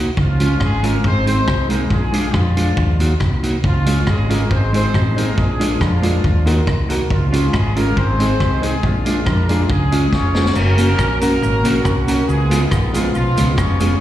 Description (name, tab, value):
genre	ska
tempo	139 BPM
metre	4/4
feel	straight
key	Db major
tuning	A4 = 444 Hz
part	mellow electric guitar	accompaniment	0.0-13.9 s	Ab3 to Gb4	-22 LUFS	right 2 dB	tube saturation, slapback echo
part	hollow-body short-scale fingered electric bass	bass	0.0-13.9 s	F1 to F2	-18 LUFS	equal	none
part	warm horn section	melody	0.2-14.0 s	Eb3 to Db5	-22 LUFS	left 1 dB	slapback echo
part	vintage drum kit	drums	0.2-13.9 s	crash cymbal, hi-hat, kick drum, rim click, snare drum	-21 LUFS	equal	dub echo
part	clear upright piano	stabs	3.9-14.0 s	Ab3 to Bb4	-25 LUFS	left 3 dB	dub echo, slapback echo
part	cabasa	percussion	10.6-13.9 s	none	-38 LUFS	right 4 dB	none
room	light reverb, small room reverb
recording	live gig heard through the venue's PA, recital hall reverb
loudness	-14 LUFS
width	side -13 dB against mid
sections	0.0-10.6 A section; 10.6-14.0 B section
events	drum fill 10.1-10.6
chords	0.2 Db; 1.0 Ab; 1.9 Bb7; 2.8 Ebm; 3.6 Db; 4.5 Ab; 5.4 Bb7; 6.2 Ebm; 7.1 Db; 8.0 Ab; 8.8 Bb7; 9.7 Db; 10.6 Gb; 12.3 Db7